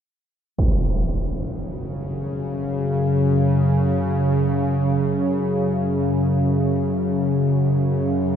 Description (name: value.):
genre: dark ambient drone.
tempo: free time.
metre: none.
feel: none.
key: unclear.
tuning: A4 = 440 Hz.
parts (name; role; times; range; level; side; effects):
bowed-like drone; drone; 1.4-8.4 s; F#2 to C#3; -19 LUFS; equal; built-in reverb.
impact; percussion; 0.6-0.8 s; none; -24 LUFS; right 1 dB; low-pass filter on sfx.
room: wet huge ambient reverb, RT60 7.5 s.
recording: dreamy mix soaked in reverb.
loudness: -19 LUFS.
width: side -8 dB against mid.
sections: 0.6-8.4 A section.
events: none.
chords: 0.6 F#5.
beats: free time.